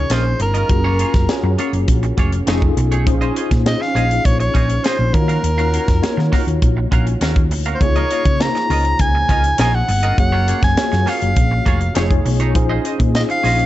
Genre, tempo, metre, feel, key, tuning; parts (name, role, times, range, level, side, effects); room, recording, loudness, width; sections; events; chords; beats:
polished 1980s jazz-funk pop; 101 BPM; 4/4; straight; Db major; A4 = 440 Hz
bright soprano saxophone; melody; 0.0-13.7 s; Bb4 to Bb5; -20 LUFS; equal
tine electric piano; accompaniment; 0.0-13.7 s; A3 to Db5; -23 LUFS; left 2 dB; overdrive, fast stereo tremolo, analog chorus
hollow-body short-scale fingered electric bass; bass; 0.0-13.7 s; F1 to Eb3; -18 LUFS; equal
semi-hollow electric guitar; riff; 0.1-13.6 s; A3 to F5; -27 LUFS; right 4 dB; lush chorus
tight funk drum kit; drums; 0.1-13.7 s; hi-hat, kick drum, snare drum; -19 LUFS; equal
small room ambience; dark, warm production, nothing above 8.0 kHz; -14 LUFS; side -14 dB against mid
0.0-13.7 A section
0.0 Db69; 0.7 Gbmaj9; 2.5 F7alt; 3.1 Bbm11; 5.1 Ebm9; 7.8 Db69; 10.2 Gbmaj9; 12.0 F7alt; 12.6 Bbm11
0.10 | 0.70 1.29 1.88 2.47 | 3.07 3.66 4.25 4.84 | 5.44 6.03 6.62 7.22 | 7.81 8.40 8.99 9.59 | 10.18 10.77 11.37 11.96 | 12.55 13.14